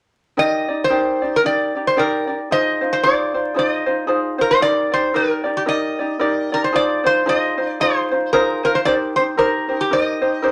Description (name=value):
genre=Hawaiian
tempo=113 BPM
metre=4/4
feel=swing 59% on 8ths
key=Eb major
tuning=A4 = 440 Hz
part: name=metal-body resonator slide guitar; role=melody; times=0.4-10.5 s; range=G4 to Eb5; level=-21 LUFS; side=equal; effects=none
part: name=ukulele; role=accompaniment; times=0.4-10.5 s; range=Eb4 to D5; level=-22 LUFS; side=equal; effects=none
room=moderate studio reverb, RT60 0.7 s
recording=vinyl crackle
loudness=-19 LUFS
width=mono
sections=0.4-4.6 A section; 4.6-10.5 B section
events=none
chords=0.4 Ebmaj7; 2.5 Fm7; 4.6 Ebmaj7; 6.7 Fm7; 8.9 Cm7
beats=| 0.38 0.91 1.44 1.97 | 2.50 3.03 3.56 4.09 | 4.62 5.15 5.68 6.21 | 6.74 7.26 7.79 8.32 | 8.85 9.38 9.91 10.44